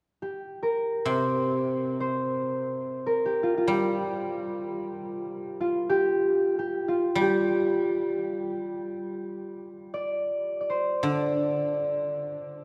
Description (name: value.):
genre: chinese traditional, Chinese chamber ensemble.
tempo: free time.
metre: none.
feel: none.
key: G yu mode.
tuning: A4 = 439 Hz.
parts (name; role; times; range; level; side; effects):
concert harp; melody; 0.2-12.6 s; F4 to D5; -29 LUFS; equal; none.
guzheng; accompaniment; 1.1-12.6 s; C3 to G3; -34 LUFS; equal; none.
room: wet cathedral reverb, RT60 7.0 s.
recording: recorded in a church or concert hall.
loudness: -28 LUFS.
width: mono.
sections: 0.0-12.6 A section.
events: none.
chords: none.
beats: free time.